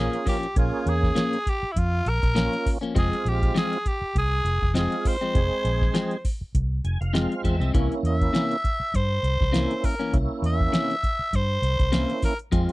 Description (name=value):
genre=straight-eighth soul blues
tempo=100 BPM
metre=4/4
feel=swing 56% on 16ths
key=unclear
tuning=A4 = 440 Hz
part: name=growling tenor saxophone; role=melody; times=0.0-12.4 s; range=E4 to E5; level=-27 LUFS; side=equal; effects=none
part: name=tonewheel organ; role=accompaniment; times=0.0-12.7 s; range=Ab3 to Ab5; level=-29 LUFS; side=right 3 dB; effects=overdrive, chorus vibrato, slow rotary speaker
part: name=clean electric guitar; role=stabs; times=0.0-12.7 s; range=F2 to Db4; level=-27 LUFS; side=left 4 dB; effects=none
part: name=vintage muted fingered electric bass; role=bass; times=0.0-12.7 s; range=F1 to G2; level=-25 LUFS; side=equal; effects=none
part: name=soft vintage rhythm box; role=drums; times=0.1-12.7 s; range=hi-hat, kick drum, snare drum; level=-25 LUFS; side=equal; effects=overdrive
room=little or no reverb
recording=dry, close 1970s-style studio recording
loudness=-21 LUFS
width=side -19 dB against mid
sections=0.0-12.7 A section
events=tonewheel organ fill 6.5-7.7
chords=0.0 Bbm; 3.0 Fm; 7.7 C7b9